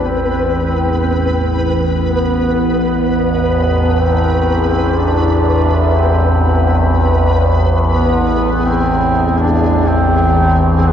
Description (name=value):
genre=dark ambient drone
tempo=free time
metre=none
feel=none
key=A harmonic minor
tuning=A4 = 439 Hz
part: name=warm duduk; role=melody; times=0.0-10.9 s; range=B3 to D4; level=-19 LUFS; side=right 1 dB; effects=ping-pong delay
part: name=overtone-sweeping drone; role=drone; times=0.0-10.9 s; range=A1 to E2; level=-13 LUFS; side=equal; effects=chorus, built-in reverb
part: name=flickering grainy texture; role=texture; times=0.0-10.9 s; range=G#4 to B4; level=-20 LUFS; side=left 1 dB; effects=built-in reverb
room=wet cathedral reverb, RT60 5.4 s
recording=worn, warbling old tape, cassette tape, warbly pitch drift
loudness=-12 LUFS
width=side -9 dB against mid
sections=0.0-10.9 A section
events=fade-in on duduk 0.0-10.9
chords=0.0 Am